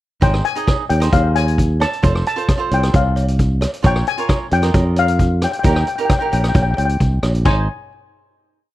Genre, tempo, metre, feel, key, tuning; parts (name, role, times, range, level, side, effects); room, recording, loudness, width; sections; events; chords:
calypso; 133 BPM; 4/4; straight; Ab major; A4 = 441 Hz
steel pan; melody; 0.2-7.7 s; F5 to A5; -21 LUFS; left 5 dB
cavaquinho; accompaniment; 0.2-7.7 s; Eb4 to Eb5; -24 LUFS; right 6 dB
fingered electric bass; bass; 0.2-7.7 s; F1 to F2; -17 LUFS; equal
street-band drum kit; drums; 0.2-7.6 s; crash cymbal, hi-hat, kick drum, rim click; -18 LUFS; equal
cowbell; percussion; 0.2-7.7 s; -28 LUFS; right 2 dB
small room reverb; dry, close 1970s-style studio recording; -14 LUFS; side -15 dB against mid
0.2-7.5 verse; 7.5-8.7 final chord
0.2 Ab; 2.0 F; 3.8 Bbm; 5.7 Eb; 7.5 Ab